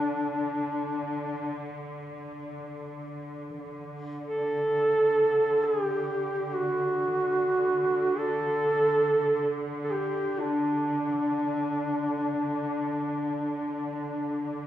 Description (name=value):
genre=caucasian folk, Caucasian lament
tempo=free time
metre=none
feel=none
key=D major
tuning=A4 = 439 Hz
part: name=mellow duduk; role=melody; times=0.0-14.7 s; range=D4 to A4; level=-25 LUFS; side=right 1 dB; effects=none
part: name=muted studio cello section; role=drone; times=0.0-14.7 s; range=D3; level=-35 LUFS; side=right 1 dB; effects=none
room=wet recital hall reverb, RT60 1.4 s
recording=recorded in a church or concert hall, studio reverb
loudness=-25 LUFS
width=side -12 dB against mid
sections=0.0-3.6 A section; 3.6-14.7 A section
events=slowing down 11.7-14.7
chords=none